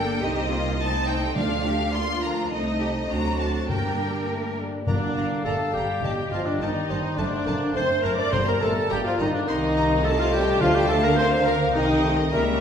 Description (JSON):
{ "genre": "quick classical-period movement for symphony orchestra", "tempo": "104 BPM", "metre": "2/4", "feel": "straight", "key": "G minor", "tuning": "A4 = 440 Hz", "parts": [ { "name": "clear studio violin section", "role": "melody", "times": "0.0-12.6 s", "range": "Eb5 to C6", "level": "-32 LUFS", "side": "left 1 dB", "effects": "none" }, { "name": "rich studio violin section", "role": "second line", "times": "0.0-12.6 s", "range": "F4 to D6", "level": "-33 LUFS", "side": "left 1 dB", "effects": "none" }, { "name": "rich studio viola section", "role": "accompaniment", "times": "0.0-12.4 s", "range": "D3 to D5", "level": "-30 LUFS", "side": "equal", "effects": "none" }, { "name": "mellow French horn section", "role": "sustained chords", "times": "0.0-12.6 s", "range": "D3 to Eb4", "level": "-30 LUFS", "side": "left 2 dB", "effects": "none" }, { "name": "rich studio cello section", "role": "bass", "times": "0.0-12.6 s", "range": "F#2 to Bb4", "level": "-31 LUFS", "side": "right 1 dB", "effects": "none" }, { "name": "warm studio double bass section", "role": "bass", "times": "0.0-12.6 s", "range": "F#1 to G2", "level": "-30 LUFS", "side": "right 2 dB", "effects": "none" }, { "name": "timpani", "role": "percussion", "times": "1.4-11.1 s", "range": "G2 to D3", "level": "-32 LUFS", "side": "left 1 dB", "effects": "none" }, { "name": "concert flute", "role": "second line", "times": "4.9-12.6 s", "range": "Bb4 to G5", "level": "-30 LUFS", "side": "left 2 dB", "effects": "none" }, { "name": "mellow clarinet", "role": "second line", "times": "4.9-12.6 s", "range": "D4 to D5", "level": "-28 LUFS", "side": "equal", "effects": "none" }, { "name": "warm oboe", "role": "second line", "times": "4.9-12.6 s", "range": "D4 to D5", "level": "-31 LUFS", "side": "right 1 dB", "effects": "none" }, { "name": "mellow bassoon", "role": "accompaniment", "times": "4.9-12.6 s", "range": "G3 to Bb3", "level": "-30 LUFS", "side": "right 2 dB", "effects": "none" } ], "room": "wet recital hall reverb, RT60 1.5 s", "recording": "minimal, uncompressed stereo recording", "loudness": "-21 LUFS", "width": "side -8 dB against mid", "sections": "0.0-4.9 A section; 4.9-12.6 B section", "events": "none", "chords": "0.2 Cm7; 0.8 Adim/C; 1.4 Dm; 1.9 Bb/D; 2.5 Adim/C; 3.1 D7; 3.7 Gm; 6.0 Am7b5/G; 7.2 D/F#; 8.3 Gm; 9.5 Cm7; 10.0 Adim/C; 10.6 Dm; 11.2 Bb/D; 11.7 Cm7", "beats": "| 0.23 0.80 | 1.37 1.94 | 2.52 3.10 | 3.69 4.29 | 4.87 5.45 | 6.03 6.60 | 7.18 7.76 | 8.33 8.90 | 9.48 10.04 | 10.61 11.18 | 11.75 12.33" }